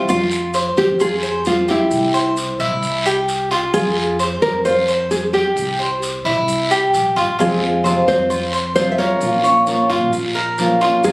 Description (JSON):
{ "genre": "latin, Cuban son and guajira", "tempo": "131 BPM", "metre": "4/4", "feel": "straight", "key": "F harmonic minor", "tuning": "A4 = 440 Hz", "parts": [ { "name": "fingerpicked steel-string acoustic guitar", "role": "accompaniment", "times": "0.0-0.1, 7.4-11.1 s", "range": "C3 to F4", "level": "-17 LUFS", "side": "equal", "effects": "none" }, { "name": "Cuban tres", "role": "arpeggios", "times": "0.0-11.1 s", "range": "E4 to Db5", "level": "-19 LUFS", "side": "equal", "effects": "none" }, { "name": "upright bass", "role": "bass", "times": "0.0-11.1 s", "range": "F1 to F2", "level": "-26 LUFS", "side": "equal", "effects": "none" }, { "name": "nylon-string guitar", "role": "melody", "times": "0.1-11.1 s", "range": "E4 to E5", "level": "-18 LUFS", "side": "equal", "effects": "slapback echo, plate reverb" }, { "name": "guiro", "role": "percussion", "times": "0.1-11.1 s", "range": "none", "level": "-27 LUFS", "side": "equal", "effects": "none" }, { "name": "maracas", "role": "percussion", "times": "0.1-11.1 s", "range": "none", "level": "-34 LUFS", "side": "right 2 dB", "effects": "none" } ], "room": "moderate studio reverb, RT60 0.7 s", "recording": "recorded on a phone in the room, club reverb", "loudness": "-14 LUFS", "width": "side -24 dB against mid", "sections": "0.1-11.1 A section", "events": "none", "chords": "0.1 Fm; 1.9 C; 3.7 Fm; 5.6 C; 7.4 Fm; 9.2 Bbm", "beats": "| 0.09 0.54 1.00 1.46 | 1.91 2.37 2.83 3.28 | 3.74 4.20 4.65 5.11 | 5.57 6.02 6.48 6.93 | 7.39 7.85 8.30 8.76 | 9.22 9.68 10.13 10.59 | 11.04" }